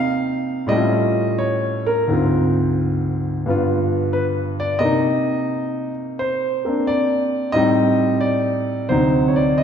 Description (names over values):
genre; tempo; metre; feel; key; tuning
solo jazz; 88 BPM; 4/4; swing 69% on 8ths, rubato; C minor; A4 = 439 Hz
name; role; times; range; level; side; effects
warm grand piano; solo; 0.0-9.6 s; D2 to F5; -17 LUFS; equal; none
room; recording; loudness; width
wet scoring stage reverb, RT60 2.0 s; recorded in a church or concert hall; -17 LUFS; side -8 dB against mid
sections
0.0-9.6 A section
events
none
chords
0.0 Cm7; 0.7 Aaug7; 2.1 Dm7b5; 3.5 G7; 4.8 Cm9; 7.5 Am7b5; 8.9 D7b9